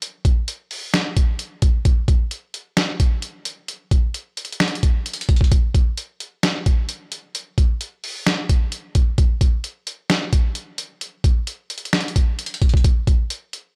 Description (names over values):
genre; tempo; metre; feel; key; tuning
hip hop; 131 BPM; 4/4; half-time; none; none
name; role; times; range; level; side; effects
boom bap sampler-style drum kit; drums; 0.0-13.6 s; finger snaps, hi-hat, kick drum, snare drum; -20 LUFS; equal; none
room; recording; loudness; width
little or no reverb; dry, gritty hardware recording; -20 LUFS; mono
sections
0.0-13.8 A section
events
none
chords
none